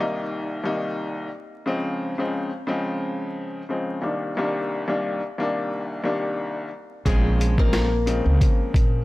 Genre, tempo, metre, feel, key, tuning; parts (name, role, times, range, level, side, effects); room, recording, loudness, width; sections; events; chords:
hip hop, boom-bap hip-hop; 89 BPM; 4/4; swing 56% on 16ths; A4 = 441 Hz
nylon-string guitar; melody; 0.0-1.1, 7.1-9.0 s; Ab3 to Eb5; -28 LUFS; left 1 dB; high-pass filter, low-pass filter, digital delay
warm upright piano; accompaniment; 0.0-9.0 s; C2 to Eb4; -25 LUFS; left 1 dB; cassette tape, high-pass filter, low-pass filter
upright bass; bass; 7.1-9.0 s; Bb1 to Db2; -22 LUFS; equal
boom bap sampler-style drum kit; drums; 7.1-8.9 s; hi-hat, kick drum, snare drum; -20 LUFS; equal
light reverb, studio reverb; vinyl crackle; -22 LUFS; side -19 dB against mid
0.0-9.0 A section
0.0 Cm7; 1.7 Dbmaj7; 4.0 Cm9; 7.1 Bbm9